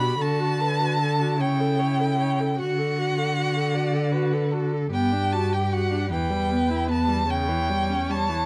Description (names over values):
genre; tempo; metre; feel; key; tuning
classical, slow romantic movement for string quartet; 50 BPM (dotted quarters); 6/8; rubato; unclear; A4 = 440 Hz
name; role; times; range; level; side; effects
warm violin; melody; 0.0-8.5 s; E4 to D5; -37 LUFS; equal; none
rich violin; second line; 0.0-8.5 s; F#5 to B5; -29 LUFS; equal; none
rich viola; accompaniment; 0.0-8.5 s; C#3 to C#5; -30 LUFS; equal; none
warm cello; bass; 0.0-8.5 s; E2 to D3; -28 LUFS; equal; none
room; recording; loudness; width
light reverb; dark, warm production; -24 LUFS; mono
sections
0.0-8.5 A section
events
none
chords
0.2 D; 1.4 A/C#; 2.6 D; 4.9 Gmaj7; 6.1 Em; 7.3 C#dim/E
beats
| 0.19 1.39 | 2.58 3.74 | 4.92 6.10 | 7.28